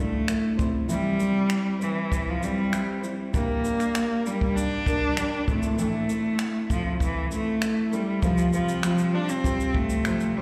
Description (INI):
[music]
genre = acoustic pop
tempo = 98 BPM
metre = 4/4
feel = straight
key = unclear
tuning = A4 = 442 Hz
[part]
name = rich cello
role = melody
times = 0.0-10.4 s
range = E3 to D4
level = -28 LUFS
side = equal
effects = slapback echo, digital delay
[part]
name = fingerpicked steel-string acoustic guitar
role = accompaniment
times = 0.0-10.4 s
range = A2 to C5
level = -32 LUFS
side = equal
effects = double-tracked, slapback echo
[part]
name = jazz brush drum kit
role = drums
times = 0.3-10.3 s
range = finger snaps, kick drum, shaker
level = -31 LUFS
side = equal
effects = none
[part]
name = felt-muted upright piano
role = accompaniment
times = 8.2-10.4 s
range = G3 to C5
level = -37 LUFS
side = equal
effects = slapback echo
[sound]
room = light reverb, small room ambience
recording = live gig heard through the venue's PA, recital hall reverb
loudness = -25 LUFS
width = mono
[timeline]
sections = 0.0-8.2 A section; 8.2-10.4 B section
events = none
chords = 0.0 Dsus2; 0.6 C; 3.3 Gm; 5.5 Am; 8.2 Csus4